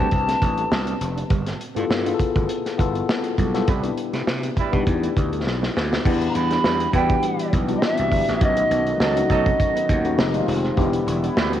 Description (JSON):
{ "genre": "polished 1980s jazz-funk pop", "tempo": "101 BPM", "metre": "4/4", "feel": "swing 54% on 16ths", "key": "unclear", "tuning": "A4 = 443 Hz", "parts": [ { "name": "polished pan flute", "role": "melody", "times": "0.0-1.0, 6.3-10.4 s", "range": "D#5 to B5", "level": "-23 LUFS", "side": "right 2 dB", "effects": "cassette tape, tape echo" }, { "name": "tine electric piano", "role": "accompaniment", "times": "0.0-11.6 s", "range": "Ab3 to B4", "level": "-25 LUFS", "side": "left 7 dB", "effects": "overdrive, wide subtle chorus, cassette tape" }, { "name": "mellow electric guitar", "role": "riff", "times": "0.0-11.3 s", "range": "G3 to E4", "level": "-34 LUFS", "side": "right 10 dB", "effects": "none" }, { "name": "gritty slap bass", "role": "bass", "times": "0.0-11.6 s", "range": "E1 to C3", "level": "-26 LUFS", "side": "right 1 dB", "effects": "overdrive" }, { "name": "modern studio drum kit", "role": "drums", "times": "0.1-11.6 s", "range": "crash cymbal, hi-hat, kick drum, snare drum", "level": "-23 LUFS", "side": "right 1 dB", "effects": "none" }, { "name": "warm horn section", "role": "second line", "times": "3.7-11.5 s", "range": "F#3 to B4", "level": "-31 LUFS", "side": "right 8 dB", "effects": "cassette tape, tape echo" }, { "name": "chorused pulse-width pad", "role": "sustained chords", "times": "6.0-11.6 s", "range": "D3 to G4", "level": "-28 LUFS", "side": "right 1 dB", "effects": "cassette tape" } ], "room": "light reverb", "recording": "home recording on cassette", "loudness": "-19 LUFS", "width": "side -11 dB against mid", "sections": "0.0-6.0 A section; 6.0-11.6 B section", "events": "band accent 3.7-6.0; drum fill 5.5-6.0", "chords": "0.0 Am11; 1.3 G13; 3.7 Cmaj9; 6.0 Em7; 8.4 B7; 10.2 Fm7; 10.8 Em7" }